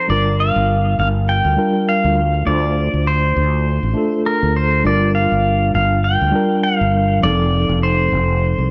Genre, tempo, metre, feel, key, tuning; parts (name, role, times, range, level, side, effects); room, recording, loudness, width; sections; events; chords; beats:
sunset chillout; 101 BPM; 4/4; swing 56% on 16ths; G minor; A4 = 437 Hz
pedal steel guitar; melody; 0.0-8.7 s; Bb4 to G5; -21 LUFS; equal; digital delay
mellow tine electric piano; accompaniment; 0.0-8.7 s; F3 to C5; -22 LUFS; equal
fretless electric bass; bass; 0.1-8.7 s; F1 to D2; -20 LUFS; equal; tube saturation
moderate lush hall reverb, RT60 2.6 s; -16 LUFS; mono
0.1-8.7 A section
0.1 Gm7; 2.2 Dm7; 4.9 Gm7; 7.2 F7
| 0.10 0.69 1.29 1.88 | 2.48 3.07 3.66 4.26 | 4.85 5.45 6.04 6.63 | 7.23 7.82 8.41